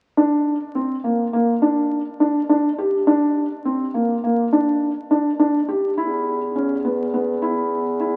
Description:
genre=contemporary instrumental, chamber music in an uneven meter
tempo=103 BPM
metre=5/4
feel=straight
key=unclear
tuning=A4 = 441 Hz
part: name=felt-muted upright piano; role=arpeggios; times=0.2-8.2 s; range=Bb3 to G4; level=-21 LUFS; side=equal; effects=none
part: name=warm bass clarinet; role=bass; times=6.0-8.2 s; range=E2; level=-26 LUFS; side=equal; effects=none
room=wet plate reverb, RT60 3.0 s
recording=very old 78 rpm record, vinyl crackle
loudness=-20 LUFS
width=mono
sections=0.2-8.2 A section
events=none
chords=0.2 Gm (rootless); 6.0 E5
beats=| 0.17 0.75 1.33 1.91 2.49 | 3.07 3.65 4.24 4.82 5.39 | 5.98 6.56 7.14 7.72

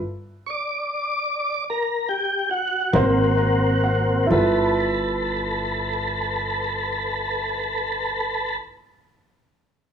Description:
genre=slow blues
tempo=42-53 BPM (dotted quarters)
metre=12/8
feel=straight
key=G mixolydian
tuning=A4 = 442 Hz
part: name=tonewheel organ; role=sustained chords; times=0.5-8.6 s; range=Bb3 to D5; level=-23 LUFS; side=left 1 dB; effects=slow rotary speaker, chorus vibrato, cassette tape
part: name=warm grand piano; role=accompaniment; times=2.9-8.6 s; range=E4 to Bb5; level=-24 LUFS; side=right 2 dB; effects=cassette tape
part: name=upright bass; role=bass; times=2.9-8.6 s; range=G1 to Ab1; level=-24 LUFS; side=right 1 dB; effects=none
room=light reverb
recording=home recording on cassette, studio reverb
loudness=-20 LUFS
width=side -7 dB against mid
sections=0.0-4.3 A section; 4.3-9.9 B section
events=slowing down 0.0-4.3; tonewheel organ solo 0.0-4.3; stop 0.0-2.9; grand piano fill 2.9-4.3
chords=0.0 G5; 2.9 Ab9; 4.3 G13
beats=0.49 1.67 2.94 | 4.31 5.75 7.19

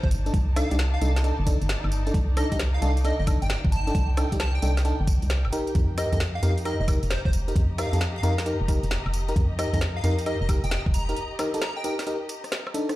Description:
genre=UK garage, two-step garage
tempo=133 BPM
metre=4/4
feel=swing 66% on 16ths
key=unclear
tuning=A4 = 440 Hz
part: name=plucky unison lead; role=melody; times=0.0-11.9 s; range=C5 to Bb5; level=-34 LUFS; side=right 1 dB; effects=dub echo
part: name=organ-like FM bass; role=bass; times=0.0-11.1 s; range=F1 to F2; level=-25 LUFS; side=equal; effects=none
part: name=electronic kick drum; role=drums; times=0.0-10.9 s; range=none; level=-24 LUFS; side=equal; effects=overdrive
part: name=dark studio string section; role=texture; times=0.0-13.0 s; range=Eb4 to Bb5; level=-37 LUFS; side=left 2 dB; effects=sidechain pumping
part: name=garage drum kit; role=drums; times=0.1-13.0 s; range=hi-hat, rim click, snare drum, tambourine, woodblock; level=-32 LUFS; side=equal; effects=overdrive
part: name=FM electric piano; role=stabs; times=0.3-13.0 s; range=D4 to Bb4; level=-30 LUFS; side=equal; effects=chorus, cassette tape, dub echo
room=light reverb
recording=played on a big sound system in a bare room, large studio reverb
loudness=-22 LUFS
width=side -16 dB against mid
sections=0.0-13.0 A section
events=drop 0.0-13.0; break 11.2-13.0; drum fill 12.5-13.0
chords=0.0 Cm69; 5.5 F9sus4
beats=| 0.34 0.79 1.24 1.69 | 2.14 2.59 3.04 3.50 | 3.95 4.40 4.85 5.30 | 5.75 6.20 6.65 7.11 | 7.56 8.01 8.46 8.91 | 9.36 9.81 10.26 10.71 | 11.17 11.62 12.07 12.52

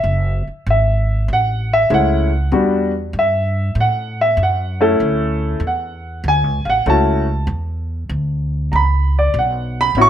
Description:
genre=jazz piano trio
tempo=97 BPM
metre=4/4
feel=swing 68% on 8ths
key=unclear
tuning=A4 = 440 Hz
part: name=warm grand piano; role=melody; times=0.0-10.1 s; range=G3 to C#6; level=-16 LUFS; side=equal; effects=plate reverb
part: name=upright bass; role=bass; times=0.0-10.1 s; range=F#1 to A2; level=-19 LUFS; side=equal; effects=none
room=light reverb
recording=none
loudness=-15 LUFS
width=side -10 dB against mid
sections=0.0-10.1 A section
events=grand piano solo 0.0-10.1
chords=0.0 F#m9; 2.5 Em7; 3.8 A5; 5.0 Dmaj9; 7.5 E5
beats=| 0.04 0.66 1.28 1.90 | 2.52 3.14 3.76 4.38 | 5.00 5.62 6.24 6.86 | 7.48 8.10 8.72 9.34 | 9.96

